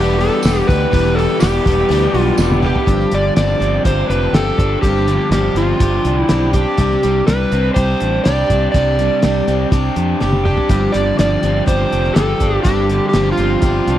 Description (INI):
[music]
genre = folk rock and heartland rock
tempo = 123 BPM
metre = 4/4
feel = straight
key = G mixolydian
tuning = A4 = 440 Hz
[part]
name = overdriven slide guitar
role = melody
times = 0.0-14.0 s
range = F4 to D5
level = -18 LUFS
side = right 1 dB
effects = slapback echo
[part]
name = picked plugged-in swing-style acoustic guitar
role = accompaniment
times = 0.0-14.0 s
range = G2 to G4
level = -22 LUFS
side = left 3 dB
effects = none
[part]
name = tonewheel organ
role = sustained chords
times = 0.0-2.8 s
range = B3 to G4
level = -28 LUFS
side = equal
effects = none
[part]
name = crunchy overdriven guitar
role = riff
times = 0.0-14.0 s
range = E2 to G4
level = -20 LUFS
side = equal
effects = none
[part]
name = fingered electric bass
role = bass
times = 0.0-14.0 s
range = E1 to F2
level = -18 LUFS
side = equal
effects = none
[part]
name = cloth-damped thuddy drum kit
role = drums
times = 0.2-14.0 s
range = hi-hat, kick drum, snare drum, toms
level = -17 LUFS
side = equal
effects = none
[part]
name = tambourine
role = percussion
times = 0.4-2.5 s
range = none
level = -30 LUFS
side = right 8 dB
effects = none
[sound]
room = light reverb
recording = dry, close 1970s-style studio recording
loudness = -13 LUFS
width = side -12 dB against mid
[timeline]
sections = 0.0-2.9 A section; 2.9-14.0 B section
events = drum fill 2.4-2.9, 10.2-10.7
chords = 0.0 Em7; 2.9 G7sus4; 6.8 Csus2; 10.7 G7sus4